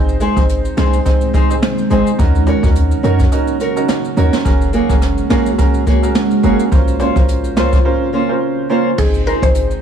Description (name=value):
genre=dancehall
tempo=106 BPM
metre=4/4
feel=swing 56% on 16ths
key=unclear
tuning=A4 = 440 Hz
part: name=clear grand piano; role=accompaniment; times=0.0-9.8 s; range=C4 to C5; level=-20 LUFS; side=right 4 dB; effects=none
part: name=deep dark ambient pad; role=sustained chords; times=1.0-9.8 s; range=C3 to C5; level=-20 LUFS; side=right 1 dB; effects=chorus, built-in reverb, sidechain pumping
part: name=clean 808-style bass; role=bass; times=0.0-9.7 s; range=Gb1 to Gb2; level=-16 LUFS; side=equal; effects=none
part: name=maracas and timbales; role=percussion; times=0.1-9.8 s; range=none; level=-35 LUFS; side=left 4 dB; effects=none
part: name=fingerpicked acoustic archtop guitar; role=arpeggios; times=0.2-9.5 s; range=Ab3 to Db5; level=-19 LUFS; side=right 1 dB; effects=none
part: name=jazz brush drum kit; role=drums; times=0.2-9.7 s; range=crash cymbal, hi-hat, kick drum, rim click, snare drum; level=-16 LUFS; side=equal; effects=none
part: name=mallet-like synth pluck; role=melody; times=9.0-9.5 s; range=Ab4 to C5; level=-19 LUFS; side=left 1 dB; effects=chorus, digital delay
room=light reverb, studio reverb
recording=none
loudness=-12 LUFS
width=side -8 dB against mid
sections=0.0-9.0 A section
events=break 7.8-9.0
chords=0.0 Ab; 2.2 Ebm7; 4.5 Gbadd9; 6.7 Bbmadd9; 9.0 Ab